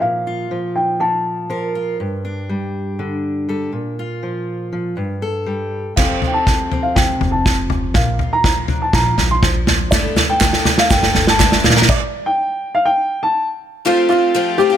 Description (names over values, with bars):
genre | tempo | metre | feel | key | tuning
indie folk with a building arrangement | 121 BPM | 4/4 | straight | F major | A4 = 441 Hz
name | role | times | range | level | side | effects
dark upright piano | melody | 0.0-1.7, 6.0-14.8 s | F4 to C6 | -18 LUFS | equal | none
fingerpicked steel-string acoustic guitar | accompaniment | 0.0-9.9 s | F2 to Bb4 | -22 LUFS | equal | none
upright bass | bass | 6.0-11.9 s | F1 to Bb1 | -21 LUFS | equal | none
unplugged drum kit | drums | 6.0-12.0 s | crash cymbal, kick drum, snare drum, toms | -15 LUFS | equal | none
picked twelve-string acoustic guitar | accompaniment | 9.9-14.8 s | G2 to Bb4 | -21 LUFS | left 6 dB | none
tube shaker | percussion | 9.9-11.8 s | none | -30 LUFS | right 19 dB | none
group handclap | percussion | 10.4-11.5 s | none | -24 LUFS | right 9 dB | none
deep dark ambient pad | sustained chords | 14.3-14.8 s | G4 to A5 | -38 LUFS | left 3 dB | none
room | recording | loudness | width
light reverb | none | -15 LUFS | side -10 dB against mid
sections
0.0-6.0 A section; 6.0-13.9 B section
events
build-up 6.0-13.9; drum fill 6.0-11.9; stop 11.9-13.9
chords
0.0 Bb5; 2.0 Gsus2; 3.7 Bb; 5.0 Gsus2; 6.0 Fadd9; 8.0 Bb; 9.9 Gadd9; 11.7 Bb; 12.9 N.C.; 13.9 Fadd9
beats
| 0.01 0.51 1.01 1.51 | 2.00 2.50 3.00 3.49 | 3.99 4.49 4.98 5.48 | 5.97 6.47 6.97 7.46 | 7.96 8.45 8.94 9.44 | 9.93 10.42 10.91 11.40 | 11.89 12.39 12.88 13.37 | 13.86 14.35